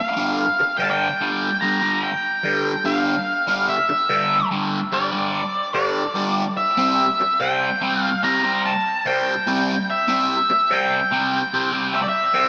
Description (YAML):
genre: rock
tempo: 73 BPM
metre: 4/4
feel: straight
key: G dorian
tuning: A4 = 441 Hz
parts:
  - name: octave-fuzz lead guitar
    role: melody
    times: 0.0-12.5 s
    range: D5 to Bb5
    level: -22 LUFS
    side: equal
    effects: distortion, diffuse ambient delay
  - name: fuzz guitar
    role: riff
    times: 0.2-12.5 s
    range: G2 to C4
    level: -25 LUFS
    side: equal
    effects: distortion, phaser
room: wet plate reverb, RT60 3.2 s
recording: dreamy mix soaked in reverb, small speaker sound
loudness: -20 LUFS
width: mono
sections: 0.0-12.5 A section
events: none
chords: 0.0 G5; 6.6 C